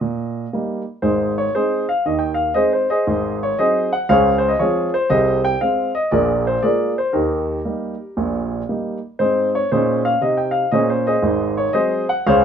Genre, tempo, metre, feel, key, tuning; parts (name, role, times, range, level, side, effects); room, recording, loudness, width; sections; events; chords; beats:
jazz, stride piano; 118 BPM; 4/4; swing 59% on 8ths; Ab major; A4 = 440 Hz
warm grand piano; solo; 0.0-12.4 s; Ab1 to G5; -16 LUFS; equal
moderate studio reverb, RT60 0.7 s; minimal, uncompressed stereo recording; -17 LUFS; side -8 dB against mid
0.0-1.0 A section; 1.0-12.4 B section
0.0 Eb; 1.0 Ab; 3.1 Ab7; 4.1 Dbmaj7; 5.1 Ab/C; 6.1 Bb5; 7.2 Eb; 9.2 Ab; 11.2 Ab7
0.02 0.53 | 1.04 1.55 2.06 2.56 | 3.07 3.58 4.09 4.60 | 5.11 5.62 6.13 6.64 | 7.15 7.66 8.17 8.68 | 9.20 9.71 10.22 10.73 | 11.24 11.75 12.26